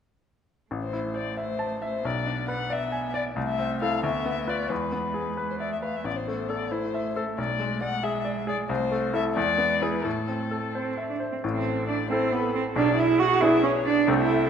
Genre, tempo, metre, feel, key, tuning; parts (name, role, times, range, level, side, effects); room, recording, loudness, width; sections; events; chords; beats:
quick classical-period movement for piano quartet; 90 BPM (dotted quarters); 6/8; straight; A minor; A4 = 440 Hz
muted cello; second line; 0.7-14.5 s; G#3 to F#4; -28 LUFS; right 5 dB
bright grand piano; accompaniment; 0.7-14.5 s; A1 to A5; -28 LUFS; left 2 dB
muted violin; melody; 0.8-14.5 s; A4 to F#5; -30 LUFS; left 6 dB
muted viola; accompaniment; 11.4-14.5 s; G#4 to A4; -32 LUFS; equal
moderate scoring stage reverb, RT60 2.1 s; -24 LUFS; side -7 dB against mid
0.7-11.4 A section; 11.4-14.5 B section
0.7 Am; 2.0 G#dim/B; 3.4 Am/C; 4.0 Bdim/D; 4.7 E; 6.1 Am; 7.4 G#dim/B; 8.7 Am/C; 9.4 E7; 10.1 Am; 12.8 G#dim/B
| 0.71 1.38 | 2.05 2.71 | 3.37 4.03 | 4.71 5.38 | 6.06 6.72 | 7.38 8.04 | 8.70 9.36 | 10.05 10.74 | 11.43 12.10 | 12.76 13.42 | 14.08